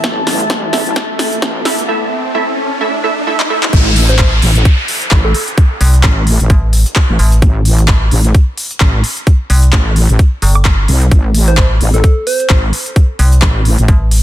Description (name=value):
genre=bass house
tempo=130 BPM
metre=4/4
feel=swing 57% on 16ths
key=A minor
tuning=A4 = 437 Hz
part: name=orchestra-hit-like synth stab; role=stabs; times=0.0-3.6 s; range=A3 to E5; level=-19 LUFS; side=right 4 dB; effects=built-in reverb, sidechain pumping, tape echo
part: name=wobble bass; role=bass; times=0.0-13.9 s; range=A1 to C2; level=-12 LUFS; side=equal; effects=chorus, overdrive, sidechain pumping, high-pass filter
part: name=big-room dance drum kit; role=drums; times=0.0-14.2 s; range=crash cymbal, handclaps, hi-hat, snare drum, woodblock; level=-17 LUFS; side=equal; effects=none
part: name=electronic kick drum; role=drums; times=0.0-14.0 s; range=none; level=-9 LUFS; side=equal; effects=overdrive, high-pass filter on kick
part: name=riser and downlifter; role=sound effects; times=0.0-7.4 s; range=none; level=-20 LUFS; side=right 1 dB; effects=none
part: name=deep dark ambient pad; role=texture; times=0.0-1.9 s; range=E4 to A5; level=-21 LUFS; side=left 2 dB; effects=chorus, built-in reverb, sidechain pumping
part: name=soft struck synth lead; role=melody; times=4.1-5.4, 11.5-12.6 s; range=A4 to C5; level=-20 LUFS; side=right 1 dB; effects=chorus, tape echo
part: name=metallic FM bass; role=bass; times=4.2-14.2 s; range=G1 to C2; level=-10 LUFS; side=equal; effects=overdrive, sidechain pumping
room=little or no reverb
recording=dense, heavily limited modern master, high-pass filter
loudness=-9 LUFS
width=side -13 dB against mid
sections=0.0-3.7 A section; 3.7-14.2 B section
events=build-up 0.0-3.7; drum fill 0.0-1.9, 3.4-3.7; riser 0.0-3.7; drop 3.7-14.2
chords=0.0 A5